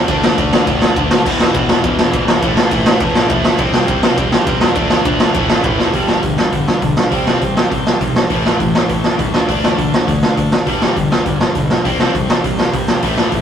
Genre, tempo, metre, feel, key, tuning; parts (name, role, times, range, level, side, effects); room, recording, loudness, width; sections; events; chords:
punk rock; 203 BPM; 4/4; straight; A4 = 440 Hz
cranked stack guitar; riff; 0.0-13.4 s; E2 to D4; -21 LUFS; left 5 dB; overdrive
cranked stack guitar; riff; 0.0-13.4 s; E2 to D4; -21 LUFS; equal; overdrive
overdriven electric guitar; riff; 0.0-13.4 s; E2 to D4; -24 LUFS; right 5 dB
fuzz picked electric bass; bass; 0.0-13.4 s; E1 to A2; -24 LUFS; right 1 dB
raw garage drum kit; drums; 0.1-13.4 s; crash cymbal, hi-hat, kick drum, ride cymbal, snare drum; -14 LUFS; equal
light reverb; rough rehearsal-room recording, tube saturation; -12 LUFS; side -8 dB against mid
0.0-5.9 A section; 5.9-13.4 B section
drum fill 5.8
0.1 D5; 1.2 E5; 2.4 A5; 3.6 C; 4.8 D5; 5.3 A5; 5.9 G; 7.1 C5; 8.3 Am; 9.3 D5; 10.7 G; 11.8 C5